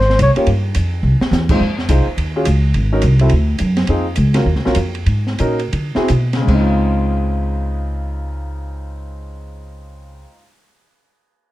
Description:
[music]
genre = jazz, small-group swing and bop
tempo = 147-212 BPM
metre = 4/4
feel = swing 62% on 8ths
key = Db major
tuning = A4 = 440 Hz
[part]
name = upright bass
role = bass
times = 0.0-10.2 s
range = Ab1 to D3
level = -16 LUFS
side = equal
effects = none
[part]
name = open jazz drum kit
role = drums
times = 0.0-6.6 s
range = crash cymbal, hi-hat, kick drum, ride cymbal, snare drum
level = -23 LUFS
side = equal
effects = none
[part]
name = warm concert grand piano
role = accompaniment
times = 0.4-10.4 s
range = Db3 to Db5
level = -20 LUFS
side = equal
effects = none
[sound]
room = light reverb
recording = dark, warm production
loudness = -14 LUFS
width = side -16 dB against mid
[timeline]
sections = 0.0-1.6 A section; 1.6-6.5 B section; 6.5-9.7 C section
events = drum fill 1.0; slowing down 3.9-6.5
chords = 0.5 Fsus2; 1.0 C; 1.6 Fm7; 2.2 Ebm9; 2.7 Ab9sus4; 3.3 D; 3.9 Fm7; 4.5 Ebm9; 5.1 Ab9sus4; 5.7 D9; 6.5 Dbmaj7

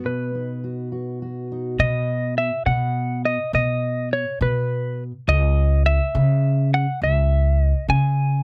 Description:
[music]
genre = indie folk with a building arrangement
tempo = 69 BPM (dotted quarters)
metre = 6/8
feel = straight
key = B major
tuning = A4 = 441 Hz
[part]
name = semi-hollow electric guitar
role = melody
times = 0.0-8.4 s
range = B4 to G#5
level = -26 LUFS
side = equal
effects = harmonic tremolo
[part]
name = fingerpicked steel-string acoustic guitar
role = accompaniment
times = 0.0-2.3 s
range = B2 to B4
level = -31 LUFS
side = equal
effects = none
[part]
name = upright bass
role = bass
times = 1.8-8.4 s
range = C#2 to C#3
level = -22 LUFS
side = equal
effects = none
[sound]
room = little or no reverb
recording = dry, close 1970s-style studio recording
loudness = -21 LUFS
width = mono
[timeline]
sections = 0.0-1.8 A section; 1.8-8.4 B section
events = none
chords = 0.0 B; 5.3 C#m

